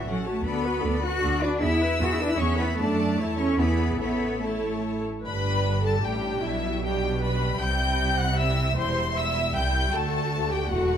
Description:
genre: quick classical-period movement for string orchestra.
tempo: 154 BPM.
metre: 3/4.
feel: rubato.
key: A major, G major from 5.2 s.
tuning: A4 = 439 Hz.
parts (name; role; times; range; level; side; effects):
clear chamber violin section; melody; 0.0-11.0 s; B4 to G6; -32 LUFS; left 6 dB; none.
rich chamber violin section; second line; 0.0-11.0 s; G3 to F#6; -34 LUFS; left 5 dB; none.
rich studio viola section; accompaniment; 0.0-11.0 s; B3 to G5; -29 LUFS; equal; none.
rich symphonic cello section; bass; 0.0-11.0 s; C2 to F#4; -28 LUFS; equal; none.
rich symphonic double bass section; bass; 0.1-11.0 s; E1 to F#2; -28 LUFS; right 2 dB; none.
room: moderate recital hall reverb, RT60 1.4 s.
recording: none.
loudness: -23 LUFS.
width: side -9 dB against mid.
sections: 0.0-5.2 A section; 5.2-11.0 B section.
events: none.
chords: 0.5 Bm7/D; 1.6 E; 2.8 D/F#; 3.2 A/E; 3.6 E7; 4.0 A; 5.2 G; 6.4 G/B; 7.6 C; 8.8 C/E; 9.9 D.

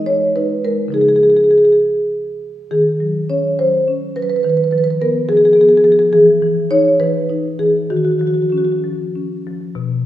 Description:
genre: classical, contemporary piece for solo marimba.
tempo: 64-72 BPM (dotted quarters).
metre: 6/8.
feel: rubato.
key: unclear.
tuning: A4 = 442 Hz.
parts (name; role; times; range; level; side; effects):
marimba with soft mallets; solo; 0.0-10.1 s; B2 to Db5; -12 LUFS; equal; none.
room: wet recital hall reverb, RT60 1.7 s.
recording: heard from further back in the room.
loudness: -12 LUFS.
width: side -13 dB against mid.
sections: 0.0-9.8 A section.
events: none.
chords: 0.0 Emaj7#11; 0.9 Dbadd9; 2.7 Ebm7; 4.4 Abm6/Eb; 6.1 Emaj7; 7.9 Ebm9.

